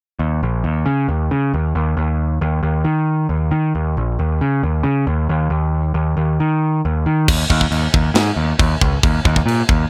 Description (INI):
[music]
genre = heavy metal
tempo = 136 BPM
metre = 4/4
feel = straight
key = unclear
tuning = A4 = 440 Hz
[part]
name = growling picked electric bass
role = bass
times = 0.2-9.8 s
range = Bb1 to Eb3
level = -19 LUFS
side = equal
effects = overdrive
[part]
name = tight metal drum kit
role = drums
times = 7.3-9.8 s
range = crash cymbal, kick drum, snare drum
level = -19 LUFS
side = equal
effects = none
[sound]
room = little or no reverb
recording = none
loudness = -18 LUFS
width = mono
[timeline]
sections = 0.2-7.3 A section; 7.3-9.9 B section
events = none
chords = none